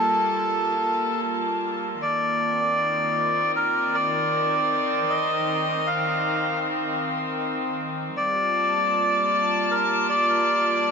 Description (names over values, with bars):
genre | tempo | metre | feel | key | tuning
ambient | 78 BPM | 4/4 | swing 58% on 16ths | unclear | A4 = 440 Hz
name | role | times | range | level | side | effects
melodica | melody | 0.0-10.9 s | A4 to F5 | -22 LUFS | equal | dub echo
warm studio string section | sustained chords | 0.0-10.9 s | Eb3 to A5 | -26 LUFS | equal | none
room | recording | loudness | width
wet echo chamber reverb, RT60 1.4 s | nothing above 7.8 kHz | -21 LUFS | side -5 dB against mid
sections
0.0-10.9 A section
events
none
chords
0.0 Gm9; 2.0 Cm9; 8.2 Gm9